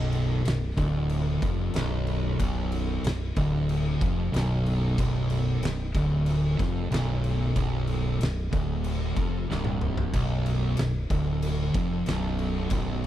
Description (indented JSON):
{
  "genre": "stoner and doom metal",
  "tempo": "93 BPM",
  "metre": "4/4",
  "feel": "straight",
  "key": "B minor",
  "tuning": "A4 = 440 Hz",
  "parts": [
    { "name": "fuzz guitar", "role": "riff", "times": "0.0-13.1 s", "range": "B1 to E#2", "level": "-27 LUFS", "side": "equal", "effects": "distortion" },
    { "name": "growling fingered electric bass", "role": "bass", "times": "0.0-13.1 s", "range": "B0 to E#1", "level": "-30 LUFS", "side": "equal", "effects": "overdrive" },
    { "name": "oversized low-tuned drum kit", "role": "drums", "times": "0.1-13.1 s", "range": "crash cymbal, kick drum, snare drum, toms", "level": "-31 LUFS", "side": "equal", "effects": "none" }
  ],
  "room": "little or no reverb",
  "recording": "none",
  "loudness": "-24 LUFS",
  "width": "side -12 dB against mid",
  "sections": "0.0-13.1 A section",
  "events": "drum fill 9.5-10.1",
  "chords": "0.0 Bm"
}